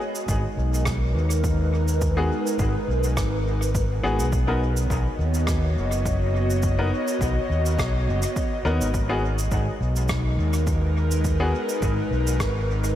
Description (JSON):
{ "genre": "ambient dub", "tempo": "104 BPM", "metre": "4/4", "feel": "swing 54% on 16ths", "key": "G# minor", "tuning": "A4 = 441 Hz", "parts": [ { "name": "airy breathy pad", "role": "sustained chords", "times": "0.0-13.0 s", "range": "G#3 to D#5", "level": "-28 LUFS", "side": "equal", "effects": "chorus" }, { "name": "cabasa and rim click", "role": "drums", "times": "0.2-12.9 s", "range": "none", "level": "-35 LUFS", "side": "right 1 dB", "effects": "dub echo" }, { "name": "overdriven fingered electric bass", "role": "bass", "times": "0.3-13.0 s", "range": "F#1 to D#2", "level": "-23 LUFS", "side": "equal", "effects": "none" }, { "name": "electronic kick drum", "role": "drums", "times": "0.3-12.5 s", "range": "none", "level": "-28 LUFS", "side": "equal", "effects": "overdrive" }, { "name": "clear upright piano", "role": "stabs", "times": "2.2-11.5 s", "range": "B3 to A#4", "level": "-30 LUFS", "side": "left 2 dB", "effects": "vintage 12-bit sampler grit, dub echo" } ], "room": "light reverb, studio reverb", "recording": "none", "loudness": "-21 LUFS", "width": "side -12 dB against mid", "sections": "0.0-13.0 A section", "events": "none", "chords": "0.0 G#m7; 4.3 Bmaj7; 8.9 G#m7", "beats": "0.29 0.86 1.44 | 2.02 2.59 3.17 3.75 | 4.33 4.90 5.48 6.05 | 6.63 7.21 7.79 8.36 | 8.94 9.52 10.09 10.67 | 11.25 11.82 12.40" }